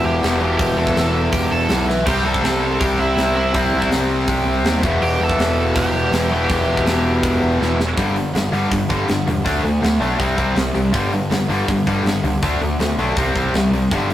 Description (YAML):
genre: punk rock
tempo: 162 BPM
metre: 4/4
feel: straight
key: unclear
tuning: A4 = 441 Hz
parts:
  - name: cranked stack guitar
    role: melody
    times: 0.0-7.6 s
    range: E4 to A5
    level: -23 LUFS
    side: right 2 dB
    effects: overdrive
  - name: fuzz guitar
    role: riff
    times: 0.0-14.1 s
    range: E2 to D4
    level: -27 LUFS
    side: right 1 dB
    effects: none
  - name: tight distorted guitar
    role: riff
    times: 0.0-14.1 s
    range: E2 to D4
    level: -20 LUFS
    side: left 2 dB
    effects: distortion
  - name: tight distorted guitar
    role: riff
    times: 0.0-14.1 s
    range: E2 to D4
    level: -25 LUFS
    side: right 4 dB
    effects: distortion
  - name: fuzz picked electric bass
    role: bass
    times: 0.0-14.1 s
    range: E1 to Eb2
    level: -22 LUFS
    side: equal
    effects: overdrive
  - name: tight metal drum kit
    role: drums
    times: 0.2-14.1 s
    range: crash cymbal, hi-hat, kick drum, snare drum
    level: -24 LUFS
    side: equal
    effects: none
room: light reverb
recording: rough rehearsal-room recording, tube saturation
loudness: -16 LUFS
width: side -12 dB against mid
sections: 0.0-8.0 A section; 8.0-14.1 B section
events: drum fill 1.9, 7.6-8.0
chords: 0.0 Em; 2.1 C; 4.8 Em; 8.0 G5; 9.5 D5; 10.2 C5; 10.9 G5; 12.4 D5; 13.2 C5